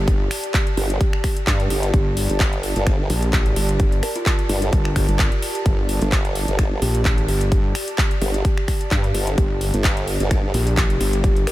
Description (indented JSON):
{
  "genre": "bass house",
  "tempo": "129 BPM",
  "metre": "4/4",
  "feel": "swing 54% on 16ths",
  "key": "G minor",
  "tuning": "A4 = 440 Hz",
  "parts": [
    { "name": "kalimba", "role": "melody", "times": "0.0-11.5 s", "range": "F4 to Bb4", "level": "-29 LUFS", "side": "equal", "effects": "diffuse ambient delay" },
    { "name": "wobble bass", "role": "bass", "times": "0.0-11.5 s", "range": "G1 to Bb1", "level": "-21 LUFS", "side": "equal", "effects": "chorus, tube saturation, sidechain pumping" },
    { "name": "airy breathy pad", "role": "texture", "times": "0.0-11.5 s", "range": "G4 to A5", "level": "-30 LUFS", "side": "right 1 dB", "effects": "chorus, sidechain pumping" },
    { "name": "big-room dance drum kit", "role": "drums", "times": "0.1-11.5 s", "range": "finger snaps, handclaps, hi-hat", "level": "-26 LUFS", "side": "equal", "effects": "studio reverb" },
    { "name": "electronic kick drum", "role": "drums", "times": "0.1-11.3 s", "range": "none", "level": "-19 LUFS", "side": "equal", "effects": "studio reverb" },
    { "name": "formant-sweep wobble bass", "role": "bass", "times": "0.8-10.5 s", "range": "G1 to G2", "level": "-21 LUFS", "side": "equal", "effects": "chorus, tube saturation, sidechain pumping" }
  ],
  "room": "digital ambience",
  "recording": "none",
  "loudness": "-17 LUFS",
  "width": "side -16 dB against mid",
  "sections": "0.0-11.5 A section",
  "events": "none",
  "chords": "0.0 Gsus2"
}